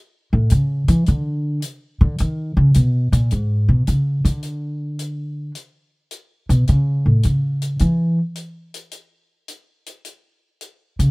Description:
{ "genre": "jazz, small-group swing and bop", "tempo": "107 BPM", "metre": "4/4", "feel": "swing 68% on 8ths", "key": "E mixolydian", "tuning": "A4 = 444 Hz", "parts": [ { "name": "upright bass", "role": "bass", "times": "0.3-11.1 s", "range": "G#2 to E3", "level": "-16 LUFS", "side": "equal", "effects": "none" }, { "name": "hi-hat", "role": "drums", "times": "0.5-11.1 s", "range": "none", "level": "-34 LUFS", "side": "left 4 dB", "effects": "none" } ], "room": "little or no reverb", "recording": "rough home demo mix", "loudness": "-16 LUFS", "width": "side -30 dB against mid", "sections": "0.0-3.3 A section; 3.3-11.1 A section", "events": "upright bass solo 0.0-11.1", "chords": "none", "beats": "0.50 | 1.06 1.62 2.18 2.74 | 3.30 3.86 4.42 4.99 | 5.55 6.11 6.67 7.24 | 7.80 8.36 8.92 9.48 | 10.04 10.61" }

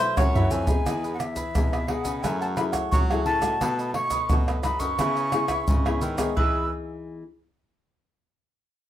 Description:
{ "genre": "samba and choro", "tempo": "87 BPM", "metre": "4/4", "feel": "straight", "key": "E major", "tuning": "A4 = 439 Hz", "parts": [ { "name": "mandolin", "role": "second line", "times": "0.0-0.7, 6.4-6.7 s", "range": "B4 to C#5", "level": "-28 LUFS", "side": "equal", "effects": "none" }, { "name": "cavaquinho", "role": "accompaniment", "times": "0.0-6.6 s", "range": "D#4 to F#5", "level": "-34 LUFS", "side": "right 4 dB", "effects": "none" }, { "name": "nylon-string guitar", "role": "accompaniment", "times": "0.0-7.2 s", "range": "F#2 to G#4", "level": "-30 LUFS", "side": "left 4 dB", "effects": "none" }, { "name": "warm baritone saxophone", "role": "bass", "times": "0.0-6.7 s", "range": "E2 to F#3", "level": "-32 LUFS", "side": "equal", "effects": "none" }, { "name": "breathy mellow jazz flute", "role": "melody", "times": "0.2-6.7 s", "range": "E5 to E6", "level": "-28 LUFS", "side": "equal", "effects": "none" }, { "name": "tube shaker, surdo, pandeiro and tamborim", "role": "percussion", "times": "0.2-6.5 s", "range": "none", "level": "-25 LUFS", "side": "equal", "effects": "none" } ], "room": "moderate studio reverb, RT60 0.5 s", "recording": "rough home demo mix", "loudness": "-22 LUFS", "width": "side -12 dB against mid", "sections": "0.9-6.4 A section; 6.4-8.9 B section", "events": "drum fill 0.2-0.9", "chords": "0.0 B7sus4; 0.9 Emaj7; 2.2 F#m9; 3.6 B7; 5.0 C#m7; 6.4 Emaj7", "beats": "0.18 | 0.87 1.55 2.24 2.93 | 3.62 4.30 4.99 5.68 | 6.37 7.06" }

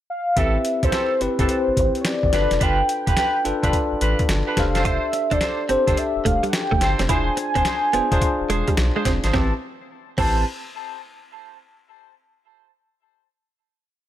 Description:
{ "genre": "R&B, new jack swing", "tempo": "107 BPM", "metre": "4/4", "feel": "swing 65% on 16ths", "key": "A minor", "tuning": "A4 = 441 Hz", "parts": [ { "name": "warm velvety synth lead", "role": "melody", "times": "0.1-10.4 s", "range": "B4 to A5", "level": "-23 LUFS", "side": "equal", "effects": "chorus, ping-pong delay" }, { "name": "bell-like tine electric piano", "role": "accompaniment", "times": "0.4-10.4 s", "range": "C4 to D5", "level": "-26 LUFS", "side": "left 3 dB", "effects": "fast stereo tremolo" }, { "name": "warm horn section", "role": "stabs", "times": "0.4-10.4 s", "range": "C4 to C5", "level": "-28 LUFS", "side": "right 3 dB", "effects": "none" }, { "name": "round analog bass", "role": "bass", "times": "0.4-10.4 s", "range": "E1 to C2", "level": "-24 LUFS", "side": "equal", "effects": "none" }, { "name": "boom bap sampler-style drum kit", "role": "drums", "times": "0.4-10.3 s", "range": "crash cymbal, hi-hat, kick drum, snare drum", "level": "-24 LUFS", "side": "equal", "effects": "none" }, { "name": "direct-recorded clean electric guitar", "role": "riff", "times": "4.9-10.3 s", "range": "G3 to F4", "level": "-27 LUFS", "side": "right 4 dB", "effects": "ensemble chorus" } ], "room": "digital ambience", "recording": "none", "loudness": "-18 LUFS", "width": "side -12 dB against mid", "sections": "0.0-0.4 pickup bar; 0.4-9.3 verse; 9.3-11.6 final chord", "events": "none", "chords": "0.4 Am7; 2.3 G7; 4.6 F6; 7.1 E7b9b13; 9.3 Am7", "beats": "| 0.36 0.93 1.49 2.05 | 2.61 3.17 3.73 4.29 | 4.85 5.41 5.97 6.53 | 7.09 7.66 8.22 8.78 | 9.34 9.90" }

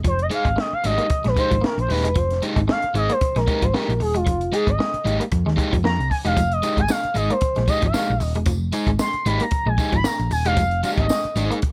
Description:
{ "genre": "funk", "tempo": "114 BPM", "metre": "4/4", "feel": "swing 56% on 16ths", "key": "F minor", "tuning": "A4 = 442 Hz", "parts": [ { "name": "clean electric guitar", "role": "riff", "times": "0.0-11.6 s", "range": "F3 to Bb3", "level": "-32 LUFS", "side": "equal", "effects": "none" }, { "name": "hollow-body short-scale picked electric bass", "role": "bass", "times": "0.0-11.7 s", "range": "Eb1 to F2", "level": "-26 LUFS", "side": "equal", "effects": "none" }, { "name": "compact cocktail drum kit", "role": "drums", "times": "0.0-11.7 s", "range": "hi-hat, kick drum, snare drum", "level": "-27 LUFS", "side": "equal", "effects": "none" }, { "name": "expressive portamento lead", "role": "melody", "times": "0.1-11.5 s", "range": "F4 to C6", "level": "-25 LUFS", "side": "equal", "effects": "chorus" }, { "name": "crunchy overdriven guitar", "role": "accompaniment", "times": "0.3-11.6 s", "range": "Ab3 to Ab4", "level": "-28 LUFS", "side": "equal", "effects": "none" }, { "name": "tambourine", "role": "percussion", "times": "6.4-11.5 s", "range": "none", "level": "-40 LUFS", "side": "equal", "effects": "none" } ], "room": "light reverb", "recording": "none", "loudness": "-21 LUFS", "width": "mono", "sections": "0.0-11.7 A section", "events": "analog synth lead solo 0.0-11.7", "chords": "0.0 Fm9", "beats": "| 0.04 0.57 1.10 1.63 | 2.16 2.69 3.21 3.74 | 4.27 4.79 5.32 5.84 | 6.37 6.89 7.42 7.95 | 8.47 9.00 9.52 10.05 | 10.58 11.10 11.63" }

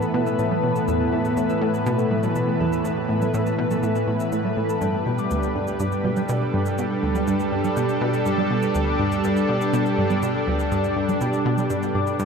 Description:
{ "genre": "ambient, sequencer-driven space music", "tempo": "122 BPM", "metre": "4/4", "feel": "straight", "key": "unclear", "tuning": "A4 = 440 Hz", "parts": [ { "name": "lush unison pad", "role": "sustained chords", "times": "0.0-12.2 s", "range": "A2 to B4", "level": "-22 LUFS", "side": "right 1 dB", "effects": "chorus" }, { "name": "concert harp", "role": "arpeggios", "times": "0.0-12.2 s", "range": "G4 to E6", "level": "-30 LUFS", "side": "moving between left 8 dB and right 1 dB", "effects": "auto-pan, analog delay" }, { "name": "shaker and congas", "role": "percussion", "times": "0.0-12.2 s", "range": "none", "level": "-32 LUFS", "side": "right 5 dB", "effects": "overdrive, analog delay" }, { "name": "analog pluck", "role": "riff", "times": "0.1-12.2 s", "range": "D2 to B2", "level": "-25 LUFS", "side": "equal", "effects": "chorus, analog delay" } ], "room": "wet huge ambient reverb, RT60 7.8 s", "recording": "dark, warm production", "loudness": "-20 LUFS", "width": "side -6 dB against mid", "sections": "0.0-12.2 A section", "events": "none", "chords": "0.0 Asus2; 4.8 G", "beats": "0.39 | 0.88 1.37 1.86 2.36 | 2.85 3.34 3.83 4.32 | 4.82 5.31 5.80 6.29 | 6.78 7.28 7.77 8.26 | 8.75 9.24 9.73 10.22 | 10.72 11.21 11.70 12.19" }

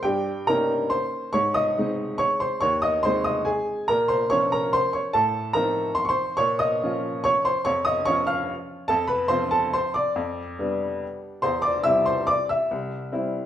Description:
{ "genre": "classical, piano waltz", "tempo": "142 BPM", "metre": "3/4", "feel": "uneven beats, rubato", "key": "C major from 8.9 s", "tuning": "A4 = 440 Hz", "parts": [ { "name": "clear upright piano", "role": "solo", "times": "0.0-13.5 s", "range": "C2 to F6", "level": "-21 LUFS", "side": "equal", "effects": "none" } ], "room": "moderate large studio reverb, RT60 1.1 s", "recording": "heard from further back in the room", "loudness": "-21 LUFS", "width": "side -11 dB against mid", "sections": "0.0-13.5 A section", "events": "none", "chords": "0.1 Eb7/G; 1.3 Ab; 3.9 Bbm; 5.2 F7/A; 6.4 Bbm; 8.9 F; 10.2 G7/F; 11.4 C/E; 12.7 C", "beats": "| 0.05 0.48 0.92 | 1.34 1.77 2.20 | 2.63 3.04 3.47 | 3.90 4.31 4.74 | 5.15 5.56 5.98 | 6.39 6.82 7.25 | 7.66 8.07 8.50 | 8.91 9.31 9.75 | 10.17 10.58 11.02 | 11.44 11.86 12.29 | 12.70 13.12" }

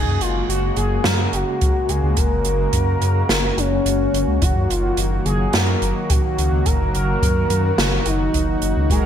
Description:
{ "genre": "synthwave", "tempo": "107 BPM", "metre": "4/4", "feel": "straight", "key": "unclear", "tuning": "A4 = 443 Hz", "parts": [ { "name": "expressive synth lead", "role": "melody", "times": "0.0-9.1 s", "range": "C#4 to A#4", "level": "-22 LUFS", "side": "left 1 dB", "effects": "lush chorus, ping-pong delay" }, { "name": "warm analog pad", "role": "sustained chords", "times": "0.0-9.1 s", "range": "C#3 to F#4", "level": "-26 LUFS", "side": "equal", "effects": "chorus, tremolo, sidechain pumping" }, { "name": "dark detuned saw bass", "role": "bass", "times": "0.0-9.0 s", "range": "F#1 to F#2", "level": "-21 LUFS", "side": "equal", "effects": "sidechain pumping" }, { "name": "open jazz drum kit", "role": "drums", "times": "0.2-9.0 s", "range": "hi-hat, snare drum", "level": "-23 LUFS", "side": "right 2 dB", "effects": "gated reverb" }, { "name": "kick drum", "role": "drums", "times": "1.6-9.0 s", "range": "none", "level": "-21 LUFS", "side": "equal", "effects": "none" }, { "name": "mellow synth brass", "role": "stabs", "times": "8.9-9.1 s", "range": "G#3 to A#4", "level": "-22 LUFS", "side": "right 4 dB", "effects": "chorus" } ], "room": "moderate lush hall reverb, RT60 2.0 s, small room ambience", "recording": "bright 1980s-style digital production", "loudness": "-16 LUFS", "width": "side -9 dB against mid", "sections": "0.0-9.1 A section", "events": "none", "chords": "0.0 F#add9; 4.4 D#m/F#", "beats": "0.49 1.05 1.61 | 2.17 2.73 3.29 3.86 | 4.42 4.98 5.54 6.10 | 6.66 7.22 7.78 8.34 | 8.90" }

